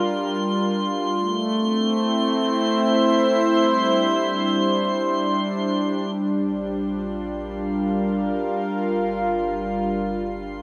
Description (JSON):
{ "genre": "ambient", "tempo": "72 BPM", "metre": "3/4", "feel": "straight", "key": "Bb lydian", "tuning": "A4 = 441 Hz", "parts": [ { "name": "warm analog pad", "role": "sustained chords", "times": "0.0-10.6 s", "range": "G3 to F5", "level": "-23 LUFS", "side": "equal", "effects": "chorus" }, { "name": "drifting glass-harmonics texture", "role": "texture", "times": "0.0-10.6 s", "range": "C6", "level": "-30 LUFS", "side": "equal", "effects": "chorus, built-in reverb" }, { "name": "warm sub bass", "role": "bass", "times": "6.2-10.6 s", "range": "G1 to Bb1", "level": "-45 LUFS", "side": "equal", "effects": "none" } ], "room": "wet lush hall reverb, RT60 3.0 s", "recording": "cassette tape", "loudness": "-22 LUFS", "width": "mono", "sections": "0.0-6.1 A section; 6.1-10.6 B section", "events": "none", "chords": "0.0 Gm7; 1.1 Am; 3.6 Cadd9; 6.1 Bb6; 8.6 Gm7", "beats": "0.31 | 1.15 1.98 2.81 | 3.65 4.48 5.31 | 6.15 6.98 7.81 | 8.65 9.48 10.31" }